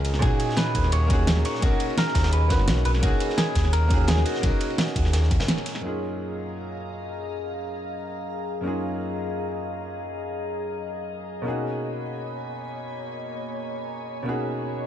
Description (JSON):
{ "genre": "liquid drum and bass", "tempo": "171 BPM", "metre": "4/4", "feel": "straight", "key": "F# major", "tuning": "A4 = 440 Hz", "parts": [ { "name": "warm grand piano", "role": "accompaniment", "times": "0.0-14.9 s", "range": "F#2 to B4", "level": "-30 LUFS", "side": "equal", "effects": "none" }, { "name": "glassy FM pad", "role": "sustained chords", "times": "0.0-14.9 s", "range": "A#3 to B5", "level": "-33 LUFS", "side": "left 2 dB", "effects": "ensemble chorus, built-in reverb, sidechain pumping" }, { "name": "smooth synth bass", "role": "bass", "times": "0.0-5.5 s", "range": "F#1 to D#2", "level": "-22 LUFS", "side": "equal", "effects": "none" }, { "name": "pop drum kit", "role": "drums", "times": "0.0-5.8 s", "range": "hi-hat, ride cymbal, snare drum", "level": "-28 LUFS", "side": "right 1 dB", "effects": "low-pass filter on hats, low-pass filter on cymbals, low-pass filter on snare" }, { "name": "crunchy breakbeat drum kit", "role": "drums", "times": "0.1-5.8 s", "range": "ride cymbal, snare drum", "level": "-35 LUFS", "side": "equal", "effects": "high-pass filter on cymbals, high-pass filter on snare, high-pass filter on room" }, { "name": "clean electric guitar", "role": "melody", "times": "0.2-5.6 s", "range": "F#4 to C#5", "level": "-30 LUFS", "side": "right 1 dB", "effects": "wide subtle chorus, ping-pong delay" }, { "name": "electronic kick drum", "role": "drums", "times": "0.2-5.4 s", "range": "none", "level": "-24 LUFS", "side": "equal", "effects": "none" } ], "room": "light reverb, studio reverb", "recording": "dark, warm production", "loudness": "-23 LUFS", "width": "side -11 dB against mid", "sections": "0.0-5.8 A section; 5.8-14.9 B section", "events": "drop 0.0-5.8; break 5.5-5.8; band accent 5.5", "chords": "0.2 Bmaj13; 5.8 F#maj13; 11.4 Bmaj13" }